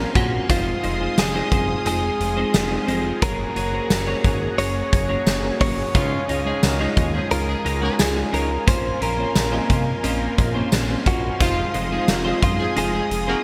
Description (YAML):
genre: 1980s-style pop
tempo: 88 BPM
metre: 4/4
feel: straight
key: unclear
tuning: A4 = 440 Hz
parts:
  - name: direct-recorded clean electric guitar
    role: melody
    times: 0.0-13.4 s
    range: F4 to Db5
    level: -28 LUFS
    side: equal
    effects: digital delay
  - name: mellow FM electric piano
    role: accompaniment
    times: 0.0-13.4 s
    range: Bb2 to Eb5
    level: -31 LUFS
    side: equal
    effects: chorus, phaser
  - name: raw garage guitar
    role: accompaniment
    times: 0.0-13.4 s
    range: F2 to Db4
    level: -37 LUFS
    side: equal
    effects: none
  - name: lush unison pad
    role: sustained chords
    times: 0.0-13.4 s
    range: Ab4 to Eb6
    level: -33 LUFS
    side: equal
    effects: chorus, phaser
  - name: twelve-string electric guitar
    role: riff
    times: 0.0-13.4 s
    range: Ab3 to Db5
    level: -32 LUFS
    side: equal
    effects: ensemble chorus
  - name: fat analog bass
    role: bass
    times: 0.0-13.4 s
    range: F1 to Eb2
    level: -29 LUFS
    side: equal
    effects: none
  - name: huge arena drum kit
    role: drums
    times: 0.2-13.3 s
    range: hi-hat, kick drum, snare drum, tambourine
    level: -25 LUFS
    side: equal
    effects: none
  - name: mellow horn section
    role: stabs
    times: 5.9-13.4 s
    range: C3 to Bb4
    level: -31 LUFS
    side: equal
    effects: none
room: light reverb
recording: bright 1980s-style digital production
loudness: -21 LUFS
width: mono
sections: 0.0-13.4 A section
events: none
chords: 0.5 Fm7; 3.2 Gbadd9; 6.0 Dbadd9; 8.7 Bbmadd9; 11.4 Fm7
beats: | 0.50 1.18 1.86 2.54 | 3.22 3.90 4.59 5.27 | 5.95 6.63 7.31 8.00 | 8.68 9.36 10.04 10.72 | 11.40 12.09 12.77